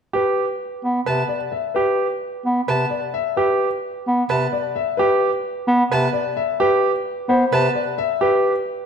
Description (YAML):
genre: classical, minimalist pattern music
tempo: 260 BPM (eighths)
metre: 7/8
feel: straight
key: C major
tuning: A4 = 439 Hz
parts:
  - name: bright concert grand piano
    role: arpeggios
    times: 0.1-8.5 s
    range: G4 to B4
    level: -22 LUFS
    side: right 5 dB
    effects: none
  - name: warm concert grand piano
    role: melody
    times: 0.2-8.5 s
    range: B4 to E5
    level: -22 LUFS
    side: left 5 dB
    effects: none
  - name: clear bass clarinet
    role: accompaniment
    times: 0.8-7.7 s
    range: C3 to B3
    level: -20 LUFS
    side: equal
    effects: none
  - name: rich violin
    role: arpeggios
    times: 1.1-7.7 s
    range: A5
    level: -28 LUFS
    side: left 2 dB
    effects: none
room: wet scoring stage reverb, RT60 1.8 s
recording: none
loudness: -18 LUFS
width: side -7 dB against mid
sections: 0.1-8.9 A section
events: none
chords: 0.1 C5